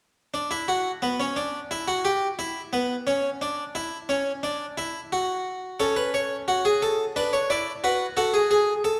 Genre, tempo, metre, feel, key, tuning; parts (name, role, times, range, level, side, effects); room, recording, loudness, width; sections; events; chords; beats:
classical, baroque-style 3-part fugue for harpsichord; 88 BPM; 4/4; straight; A4 = 440 Hz
harpsichord; solo; 0.3-9.0 s; B3 to D5; -26 LUFS; equal
wet recital hall reverb, RT60 1.8 s; -26 LUFS; mono
0.3-9.0 A section
0.3 N.C.; 5.8 A/C#; 7.2 Bm7/D
| 0.34 1.03 1.72 2.40 | 3.08 3.75 4.43 5.11 | 5.79 6.47 7.16 7.83 | 8.51